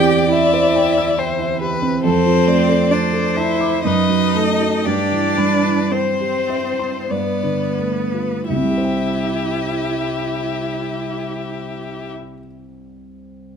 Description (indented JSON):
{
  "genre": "classical, slow romantic movement for piano quartet",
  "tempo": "41-71 BPM",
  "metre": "3/4",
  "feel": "rubato",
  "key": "C major",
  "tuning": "A4 = 441 Hz",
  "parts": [
    { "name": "rich violin", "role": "melody", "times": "0.0-12.1 s", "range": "B4 to G5", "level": "-23 LUFS", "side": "left 9 dB", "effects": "none" },
    { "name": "rich cello", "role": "second line", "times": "0.0-12.1 s", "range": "B3 to G4", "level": "-22 LUFS", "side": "right 5 dB", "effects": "none" },
    { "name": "rich violin", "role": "second line", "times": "0.0-12.1 s", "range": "G4 to D5", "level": "-22 LUFS", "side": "left 4 dB", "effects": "none" },
    { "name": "dark baby grand piano", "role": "accompaniment", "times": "0.0-13.6 s", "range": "C2 to E6", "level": "-20 LUFS", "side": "right 3 dB", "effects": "none" }
  ],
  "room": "light reverb",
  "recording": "close, detailed microphones",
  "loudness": "-16 LUFS",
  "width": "side -7 dB against mid",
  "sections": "0.0-8.5 A section; 8.5-12.7 B section",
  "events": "slowing down 0.8-8.5",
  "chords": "0.0 C/E; 2.0 Dm/F; 3.8 B7/F#; 4.9 C/G; 7.1 G9; 8.5 C",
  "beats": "0.32 1.18 | 2.03 2.91 3.84 | 4.85 5.92 7.10 | 8.50 9.88 11.30"
}